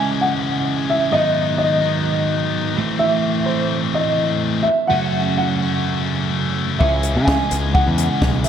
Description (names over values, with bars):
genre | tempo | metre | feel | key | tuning
indie rock | 127 BPM | 4/4 | straight | unclear | A4 = 439 Hz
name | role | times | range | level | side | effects
dark upright piano | melody | 0.0-8.5 s | C5 to G#5 | -20 LUFS | equal | wide subtle chorus, tape echo
scooped high-gain guitar | riff | 0.0-8.5 s | D#3 to G#4 | -23 LUFS | left 8 dB | distortion
twelve-string electric guitar | riff | 0.0-8.5 s | F#2 to G#4 | -22 LUFS | right 4 dB | lush chorus, tape echo
growling picked electric bass | bass | 6.8-8.4 s | B1 to C#3 | -20 LUFS | left 1 dB | overdrive
compact cocktail drum kit | drums | 6.8-8.5 s | hi-hat, kick drum, snare drum | -19 LUFS | equal | none
room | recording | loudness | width
wet plate reverb, RT60 1.9 s | dreamy mix soaked in reverb | -16 LUFS | side -8 dB against mid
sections
0.0-8.5 A section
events
none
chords
0.0 C#m; 1.1 G#m7; 2.8 Am; 4.9 F#madd9; 6.8 C#m